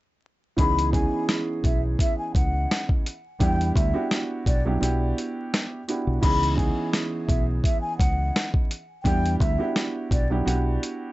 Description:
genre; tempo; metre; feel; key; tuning
hip hop, boom-bap hip-hop; 85 BPM; 4/4; swing 55% on 16ths; C# minor; A4 = 440 Hz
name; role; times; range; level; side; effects
mellow hollow concert flute; melody; 0.6-10.3 s; D5 to B5; -29 LUFS; left 2 dB; digital delay
dark baby grand piano; accompaniment; 0.6-11.1 s; E3 to G#4; -27 LUFS; right 2 dB; cassette tape
deep dub fingered electric bass; bass; 0.6-10.8 s; B1 to E2; -25 LUFS; equal; none
boom bap sampler-style drum kit; drums; 0.6-11.0 s; crash cymbal, hi-hat, kick drum, rim click, snare drum; -24 LUFS; equal; none
room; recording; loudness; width
light reverb; vinyl crackle, nothing above 7.9 kHz; -22 LUFS; side -17 dB against mid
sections
0.6-6.2 A section; 6.2-11.1 B section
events
break 4.8-6.2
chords
0.6 C#m9; 3.4 Em9; 6.2 C#m9; 9.1 Em9

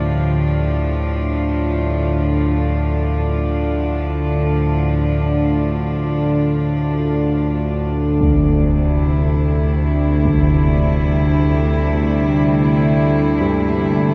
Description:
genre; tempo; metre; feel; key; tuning
dark ambient drone; free time; none; none; D minor; A4 = 440 Hz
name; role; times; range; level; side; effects
rich studio cello section; sustained chords; 0.0-14.1 s; D2 to F4; -23 LUFS; equal; none
carillon bells; arpeggios; 0.0-5.2, 13.4-14.1 s; G3 to G4; -31 LUFS; equal; none
analog drone; drone; 0.0-14.1 s; D2 to D3; -19 LUFS; equal; chorus
impact; percussion; 8.2-10.5 s; none; -27 LUFS; equal; low-pass filter on sfx
room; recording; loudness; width
wet cathedral reverb, RT60 6.1 s; none; -17 LUFS; mono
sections
0.0-14.1 A section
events
filter sweep on synth drone 0.0-14.1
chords
0.0 Dm; 8.2 Cadd9/D

